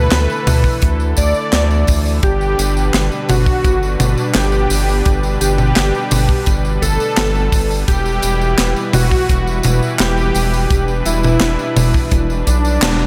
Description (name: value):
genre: synthwave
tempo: 85 BPM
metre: 4/4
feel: straight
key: E minor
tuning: A4 = 441 Hz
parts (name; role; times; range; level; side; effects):
- soft supersaw; melody; 0.0-13.1 s; D4 to D5; -22 LUFS; equal; slapback echo, delay
- soft synth bell; second line; 0.0-13.1 s; D4 to D5; -30 LUFS; equal; none
- brassy analog pad; sustained chords; 0.0-13.1 s; B2 to B4; -24 LUFS; equal; chorus, sidechain pumping
- round analog bass; bass; 0.0-13.1 s; E1 to D2; -20 LUFS; equal; tube saturation, sidechain pumping
- tight funk drum kit; drums; 0.1-13.1 s; handclaps, hi-hat, snare drum, tambourine, toms; -21 LUFS; equal; none
- kick drum; drums; 0.6-12.6 s; none; -18 LUFS; equal; none
room: light reverb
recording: none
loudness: -15 LUFS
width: mono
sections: 0.0-13.1 A section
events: band accent 12.8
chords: 0.0 Dsus2; 2.2 G; 7.9 Em